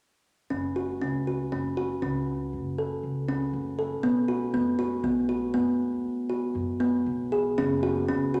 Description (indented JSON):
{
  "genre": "contemporary instrumental, contemporary",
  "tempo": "119 BPM",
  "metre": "7/4",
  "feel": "straight",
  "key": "F# minor",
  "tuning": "A4 = 438 Hz",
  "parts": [
    { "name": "kalimba", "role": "arpeggios", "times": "0.5-8.4 s", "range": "B3 to A4", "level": "-28 LUFS", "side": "equal", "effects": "none" },
    { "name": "upright bass", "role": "bass", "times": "0.5-8.4 s", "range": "F#1 to F#2", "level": "-37 LUFS", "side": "equal", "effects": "none" }
  ],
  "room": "wet recital hall reverb, RT60 1.5 s",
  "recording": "none",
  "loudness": "-28 LUFS",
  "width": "mono",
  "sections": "0.5-7.6 A section",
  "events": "none",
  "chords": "0.5 F#m; 4.0 B5; 7.6 F#5",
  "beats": "| 0.51 1.02 1.52 2.02 2.53 3.03 3.54 | 4.04 4.54 5.04 5.54 6.04 6.55 7.06 | 7.58 8.09"
}